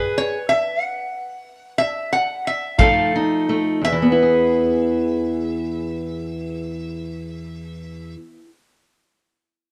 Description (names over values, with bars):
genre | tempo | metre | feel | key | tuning
acoustic country blues, solo or duo | 56-63 BPM (dotted quarters) | 12/8 | straight | E major | A4 = 440 Hz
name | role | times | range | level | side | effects
lap resonator guitar | melody | 0.0-8.1 s | B4 to F#5 | -23 LUFS | equal | plate reverb
fingerpicked steel-string acoustic guitar | accompaniment | 0.0-8.6 s | E2 to A4 | -22 LUFS | equal | none
kick drum | drums | 2.8-3.0 s | none | -21 LUFS | equal | none
room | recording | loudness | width
light reverb | dark, warm production | -20 LUFS | mono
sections
0.0-3.8 A section; 3.8-8.1 B section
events
slowing down 0.0-3.8; resonator guitar played with a steel bar solo 0.0-3.8; stop 0.0-2.8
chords
0.0 E; 2.8 F7; 3.8 E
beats
0.81 1.79 2.79 | 3.83 4.90 5.96 7.02